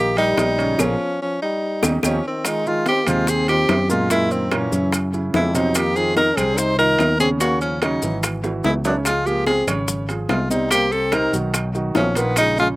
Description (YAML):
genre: Afro-Cuban jazz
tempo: 145 BPM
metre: 4/4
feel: straight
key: Ab major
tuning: A4 = 444 Hz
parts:
  - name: clear tenor saxophone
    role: melody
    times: 0.0-12.7 s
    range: B3 to C5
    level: -20 LUFS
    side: equal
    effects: none
  - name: warm trombone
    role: second line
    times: 0.0-12.7 s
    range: Eb3 to Eb4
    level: -25 LUFS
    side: left 2 dB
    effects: none
  - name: warm grand piano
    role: accompaniment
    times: 0.0-12.8 s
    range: Bb2 to Db5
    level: -25 LUFS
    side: right 2 dB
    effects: slapback echo
  - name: fretless electric bass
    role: bass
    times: 0.0-12.8 s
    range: Ab1 to Gb2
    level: -24 LUFS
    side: equal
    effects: none
  - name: bongos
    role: percussion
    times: 0.2-12.6 s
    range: none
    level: -26 LUFS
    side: left 5 dB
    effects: none
  - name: congas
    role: percussion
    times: 0.2-12.8 s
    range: none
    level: -29 LUFS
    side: left 1 dB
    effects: none
  - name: maracas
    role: percussion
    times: 0.2-12.8 s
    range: none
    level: -29 LUFS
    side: left 3 dB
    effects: none
  - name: timbales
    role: percussion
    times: 0.2-12.6 s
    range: none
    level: -28 LUFS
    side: right 3 dB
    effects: none
  - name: claves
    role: percussion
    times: 0.4-12.6 s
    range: none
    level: -32 LUFS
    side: right 3 dB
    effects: slapback echo
room: little or no reverb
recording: recorded outdoors, with no room sound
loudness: -17 LUFS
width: side -19 dB against mid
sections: 0.0-2.4 A section; 2.4-12.8 B section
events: band accent 0.8-2.4; drum fill 1.8-2.4, 8.4-9.1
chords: 0.0 Eb; 0.8 Bbm7; 1.6 Eb7; 2.4 Abmaj13/Eb; 4.1 Gb7; 5.8 F7sus4; 7.4 Ebm7; 8.2 E69/G#; 9.1 Dbmaj7; 10.7 Cm; 11.5 B